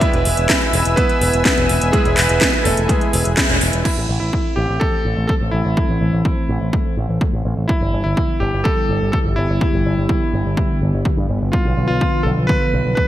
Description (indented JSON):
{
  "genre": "italo disco",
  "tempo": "125 BPM",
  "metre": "4/4",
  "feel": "straight",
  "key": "A minor",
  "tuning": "A4 = 441 Hz",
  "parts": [
    { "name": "clear electric grand piano", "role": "melody", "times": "0.0-13.1 s", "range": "G#3 to E5", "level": "-22 LUFS", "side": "equal", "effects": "digital delay" },
    { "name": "warm analog pad", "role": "sustained chords", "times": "0.0-13.1 s", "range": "D3 to E6", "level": "-23 LUFS", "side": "equal", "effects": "chorus" },
    { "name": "analog synth brass", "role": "stabs", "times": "0.0-3.8 s", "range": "G#3 to B4", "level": "-25 LUFS", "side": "right 4 dB", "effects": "chorus, cassette tape, digital delay" },
    { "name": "electronic kick drum", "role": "drums", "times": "0.0-13.1 s", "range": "none", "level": "-20 LUFS", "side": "equal", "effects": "overdrive" },
    { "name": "house drum kit", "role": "drums", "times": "0.0-3.9 s", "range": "crash cymbal, handclaps, hi-hat, snare drum", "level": "-20 LUFS", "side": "equal", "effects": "overdrive, gated reverb" },
    { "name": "picked electric bass with an envelope filter", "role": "bass", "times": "0.1-12.9 s", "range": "E1 to G2", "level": "-20 LUFS", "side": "equal", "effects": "tube saturation" }
  ],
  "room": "moderate lush hall reverb, RT60 2.1 s",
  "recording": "bright 1980s-style digital production",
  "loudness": "-15 LUFS",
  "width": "side -13 dB against mid",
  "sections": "0.0-3.9 A section; 3.9-13.1 B section",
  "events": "band accent 3.4; filter sweep on analog synth pad 3.9-13.1",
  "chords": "0.0 E; 3.9 Am; 7.7 G6; 11.5 Bdim",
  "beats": "| 0.01 0.49 0.97 1.45 | 1.93 2.41 2.89 3.37 | 3.85 4.33 4.81 5.29 | 5.77 6.25 6.73 7.21 | 7.69 8.17 8.65 9.13 | 9.61 10.09 10.57 11.05 | 11.53 12.01 12.49 12.97"
}